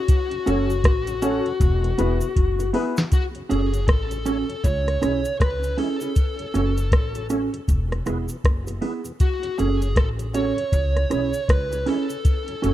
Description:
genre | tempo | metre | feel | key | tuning
roots reggae | 79 BPM | 4/4 | swing 61% on 16ths | F# minor | A4 = 440 Hz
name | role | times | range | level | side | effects
smooth overdriven lead guitar | melody | 0.0-12.7 s | F#4 to C#5 | -28 LUFS | left 2 dB | dub echo
soft vintage rhythm box | drums | 0.1-12.7 s | hi-hat, kick drum, rim click, snare drum | -20 LUFS | equal | none
cabasa | percussion | 0.1-12.7 s | none | -45 LUFS | right 3 dB | none
tonewheel organ | accompaniment | 0.3-12.7 s | E2 to C#4 | -36 LUFS | left 2 dB | overdrive, chorus vibrato, slow rotary speaker
mellow electric guitar | accompaniment | 0.5-12.7 s | B3 to A4 | -27 LUFS | right 4 dB | dub echo
dark baby grand piano | stabs | 0.5-3.0 s | B3 to C#5 | -28 LUFS | left 6 dB | none
upright bass | bass | 0.5-12.7 s | E1 to C#2 | -25 LUFS | equal | none
room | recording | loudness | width
studio reverb | rough home demo mix | -20 LUFS | side -13 dB against mid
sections
0.0-3.1 A section; 3.1-12.7 B section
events
drum fill 1.6-3.1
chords
0.1 F#m; 1.6 E; 3.1 F#m; 4.6 C#m; 6.2 F#m; 7.7 E; 9.2 F#m; 10.7 C#m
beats
| 0.09 0.84 1.60 2.36 | 3.12 3.88 4.64 5.40 | 6.16 6.92 7.68 8.44 | 9.20 9.96 10.72 11.49 | 12.25

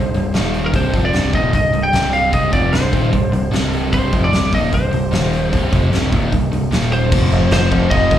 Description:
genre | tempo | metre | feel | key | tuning
hard rock | 150 BPM | 4/4 | straight | C minor | A4 = 442 Hz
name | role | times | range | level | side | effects
lightly driven lead guitar | melody | 0.0-8.2 s | Bb4 to G5 | -20 LUFS | equal | plate reverb, analog delay
sludgy distorted guitar | riff | 0.0-8.2 s | C2 to F3 | -18 LUFS | equal | overdrive, slapback echo
growling picked electric bass | bass | 0.0-8.2 s | C1 to F1 | -19 LUFS | equal | overdrive
huge arena drum kit | drums | 0.1-8.2 s | crash cymbal, hi-hat, kick drum, snare drum | -21 LUFS | equal | none
room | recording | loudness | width
light reverb | live gig heard through the venue's PA, club reverb | -14 LUFS | side -11 dB against mid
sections
0.0-7.1 A section; 7.1-8.2 B section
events
none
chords
0.3 Eb5; 0.7 Cm; 5.1 Eb5; 5.5 Cm; 6.7 Eb5; 7.1 F5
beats
0.34 | 0.74 1.14 1.54 1.94 | 2.34 2.74 3.14 3.53 | 3.93 4.33 4.73 5.13 | 5.53 5.93 6.33 6.72 | 7.12 7.52 7.92

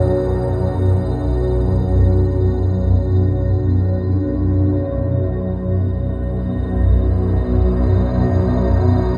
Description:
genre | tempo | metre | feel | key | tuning
ambient | free time | none | none | B minor | A4 = 440 Hz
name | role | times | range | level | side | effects
dark analog pad | sustained chords | 0.0-5.0 s | B2 to C#5 | -26 LUFS | equal | chorus, phaser
swarming drone | drone | 0.0-9.2 s | B1 to F#2 | -18 LUFS | equal | built-in reverb
icy glass pad | texture | 0.0-9.2 s | F#4 to F#5 | -40 LUFS | equal | chorus, built-in reverb
room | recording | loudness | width
wet cathedral reverb, RT60 7.0 s | in a vast, echoing space, faint mains hum | -18 LUFS | mono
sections
0.0-5.0 A section; 5.0-9.2 B section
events
fade-in on ambient pad 5.0-9.2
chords
0.0 Bm; 5.0 B5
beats
free time

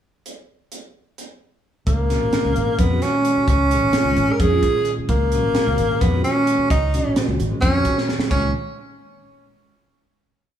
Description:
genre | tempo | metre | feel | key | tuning
electric jazz fusion | 261 BPM (eighths) | 7/8 | straight | Db major | A4 = 440 Hz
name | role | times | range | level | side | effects
crisp fusion drum kit | drums | 0.3-8.4 s | crash cymbal, hi-hat, kick drum, snare drum | -23 LUFS | right 1 dB | none
breathy tenor saxophone | melody | 1.9-8.5 s | Bb3 to Bb4 | -20 LUFS | equal | none
fingered electric bass | bass | 1.9-8.5 s | Ab1 to F2 | -22 LUFS | equal | none
bell-like tine electric piano | accompaniment | 2.1-8.5 s | Bb2 to Ab4 | -25 LUFS | right 1 dB | fast stereo tremolo, phaser
room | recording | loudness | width
light reverb | small room ambience | -16 LUFS | side -10 dB against mid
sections
0.3-1.9 pickup bar; 1.9-8.3 groove; 8.3-9.9 final chord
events
drum fill 8.0-8.3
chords
0.3 N.C.; 1.9 Dbsus24; 8.3 Db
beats
| 0.26 0.48 0.71 0.94 1.18 1.41 1.64 | 1.87 2.10 2.33 2.56 2.79 3.02 3.25 | 3.48 3.71 3.94 4.17 4.40 4.63 4.86 | 5.09 5.32 5.55 5.78 6.01 6.24 6.47 | 6.70 6.93 7.16 7.39 7.62 7.85 8.08 | 8.31

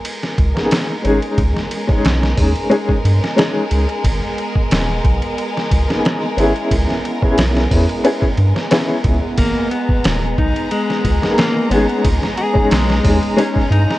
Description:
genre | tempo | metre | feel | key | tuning
trip hop | 90 BPM | 4/4 | straight | G# minor | A4 = 440 Hz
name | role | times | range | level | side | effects
rich studio violin section | sustained chords | 0.0-14.0 s | G#3 to A#5 | -24 LUFS | equal | none
bowed-like drone | texture | 0.0-14.0 s | B3 | -29 LUFS | right 3 dB | none
trip hop sampler-style drum kit | drums | 0.1-14.0 s | hi-hat, kick drum, ride cymbal, snare drum | -19 LUFS | equal | none
soft dub sub bass | bass | 0.4-13.9 s | D#1 to G2 | -17 LUFS | equal | none
warm upright piano | accompaniment | 0.5-13.6 s | G#3 to G#4 | -18 LUFS | left 1 dB | tremolo, vintage 12-bit sampler grit, tape echo
clean electric guitar | arpeggios | 9.4-14.0 s | G#3 to G#4 | -20 LUFS | left 2 dB | tape echo
room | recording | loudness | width
little or no reverb | worn, warbling old tape, cassette tape, warbly pitch drift | -14 LUFS | side -16 dB against mid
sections
0.0-14.0 A section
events
none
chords
0.0 G#madd9; 1.4 C#sus2; 4.0 G#madd9; 6.7 C#m7; 9.4 G#madd9; 12.0 C#sus2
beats
0.04 0.71 | 1.38 2.04 2.71 3.38 | 4.04 4.71 5.38 6.04 | 6.71 7.38 8.04 8.71 | 9.38 10.04 10.71 11.38 | 12.04 12.71 13.38

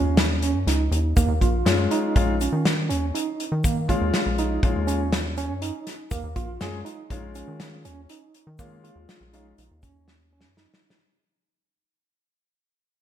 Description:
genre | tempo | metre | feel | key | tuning
progressive instrumental, band music in an uneven meter | 121 BPM | 5/4 | straight | Eb minor | A4 = 443 Hz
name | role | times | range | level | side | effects
overdriven tine electric piano | arpeggios | 0.0-10.9 s | Bb3 to F4 | -28 LUFS | right 5 dB | fast tremolo, tape echo
rubbery square bass | bass | 0.0-10.7 s | Bb1 to Eb3 | -26 LUFS | equal | none
loose indie drum kit | drums | 0.2-11.0 s | hi-hat, kick drum, snare drum | -24 LUFS | equal | none
egg shaker | percussion | 1.2-10.1 s | none | -41 LUFS | left 9 dB | none
warm baby grand piano | accompaniment | 1.7-9.5 s | Ab3 to Ab4 | -28 LUFS | left 6 dB | slapback echo
room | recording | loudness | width
moderate recital hall reverb, RT60 1.4 s, small room ambience | big arena sound | -21 LUFS | side -10 dB against mid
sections
0.0-11.1 A section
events
fade-out 0.0-11.1; drum fill 10.1-11.1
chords
0.0 Eb7(no3)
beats
0.18 0.67 | 1.17 1.66 2.16 2.65 3.15 | 3.64 4.14 4.63 5.13 5.62 | 6.12 6.61 7.11 7.60 8.10 | 8.59 9.09 9.58 10.08 10.57

